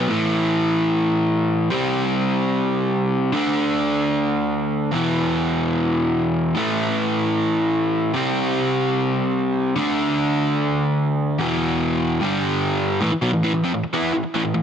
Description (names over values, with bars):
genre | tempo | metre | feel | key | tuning
rock | 149 BPM | 4/4 | straight | A minor | A4 = 439 Hz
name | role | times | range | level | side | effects
overdriven semi-hollow guitar | solo | 0.0-14.6 s | E2 to E4 | -18 LUFS | equal | none
room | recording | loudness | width
light reverb, digital ambience | dense, heavily limited modern master | -18 LUFS | side -8 dB against mid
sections
0.1-13.0 A section; 13.0-14.6 B section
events
none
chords
0.1 A5; 1.7 C5; 3.3 D5; 4.9 E5; 6.6 A5; 8.2 C5; 9.8 D5; 11.4 E5; 12.2 G5; 13.0 A5